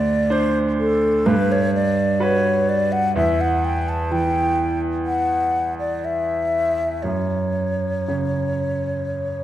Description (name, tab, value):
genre	classical, romantic duo for flute and grand piano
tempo	57-64 BPM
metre	4/4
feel	rubato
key	unclear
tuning	A4 = 441 Hz
part	mellow hollow concert flute	melody	0.0-9.4 s	A4 to A5	-21 LUFS	left 1 dB	none
part	bright concert grand piano	accompaniment	0.0-9.4 s	D2 to C5	-21 LUFS	right 2 dB	none
room	wet recital hall reverb, RT60 1.5 s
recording	dark, warm production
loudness	-18 LUFS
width	side -12 dB against mid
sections	0.0-9.4 A section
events	none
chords	0.0 Amadd11/D; 1.3 Gmaj7; 3.2 N.C.; 7.0 F#5